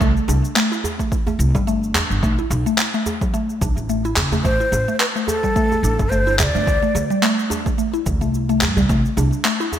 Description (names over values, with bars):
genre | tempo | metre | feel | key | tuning
organic downtempo | 108 BPM | 4/4 | swing 56% on 16ths | unclear | A4 = 438 Hz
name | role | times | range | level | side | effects
mallet-like synth pluck | arpeggios | 0.0-9.7 s | F#3 to E4 | -22 LUFS | equal | chorus, phaser, digital delay
upright bass | bass | 0.0-9.3 s | F#1 to G2 | -20 LUFS | equal | sidechain pumping
electronic cabasa and handclaps | drums | 0.0-9.8 s | none | -22 LUFS | equal | gated reverb
electronic kick drum | drums | 0.0-9.0 s | none | -22 LUFS | equal | none
djembe | percussion | 0.3-9.8 s | none | -28 LUFS | right 2 dB | none
breathy ney | melody | 4.4-7.2 s | A4 to E5 | -22 LUFS | left 1 dB | digital delay
room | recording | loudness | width
moderate plate reverb, RT60 2.6 s | bright 1980s-style digital production | -16 LUFS | side -10 dB against mid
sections
0.0-9.8 A section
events
none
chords
0.0 C5; 2.2 Bm7; 4.5 Am7; 6.7 D7sus4; 8.9 N.C.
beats
| 0.01 0.56 1.12 1.67 | 2.23 2.78 3.34 3.90 | 4.45 5.01 5.56 6.12 | 6.67 7.23 7.78 8.34 | 8.89 9.45